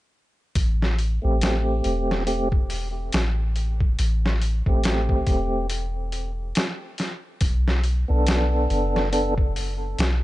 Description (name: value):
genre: trip hop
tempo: 70 BPM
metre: 4/4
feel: swing 58% on 16ths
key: A dorian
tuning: A4 = 440 Hz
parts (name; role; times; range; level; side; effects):
- soft 808-style bass; bass; 0.6-10.2 s; E1 to B1; -23 LUFS; equal; none
- trip hop sampler-style drum kit; drums; 0.6-10.2 s; hi-hat, kick drum, snare drum; -24 LUFS; equal; none
- tonewheel organ; accompaniment; 1.2-9.3 s; A3 to A4; -26 LUFS; equal; stopped rotary speaker, tremolo, tape echo
room: little or no reverb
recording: nothing above 10.4 kHz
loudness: -21 LUFS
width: side -17 dB against mid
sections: 0.6-10.2 A section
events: none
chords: 0.6 Am7; 7.4 Bm7